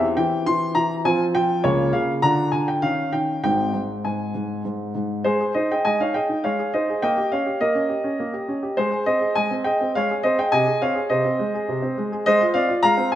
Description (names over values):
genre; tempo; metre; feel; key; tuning
classical-period piano sonatina; 103 BPM; 3/4; straight; Ab major; A4 = 440 Hz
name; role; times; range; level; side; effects
warm baby grand piano; solo; 0.0-13.2 s; Ab1 to C6; -19 LUFS; equal; none
room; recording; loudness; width
wet recital hall reverb, RT60 1.4 s; none; -19 LUFS; side -12 dB against mid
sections
0.0-5.3 A section; 5.3-13.2 A section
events
none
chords
0.0 C/E; 1.1 Fm; 1.6 Bbm/Db; 2.2 Ddim; 2.8 Eb7; 3.4 Ab; 7.0 Eb7/Bb; 8.8 Ab; 10.5 Ab/C; 12.3 Fm/Ab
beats
0.47 1.05 | 1.64 2.23 2.82 | 3.43 4.04 4.65 | 5.26 5.86 6.44 | 7.03 7.61 8.19 | 8.77 9.35 9.93 | 10.51 11.09 11.67 | 12.25 12.83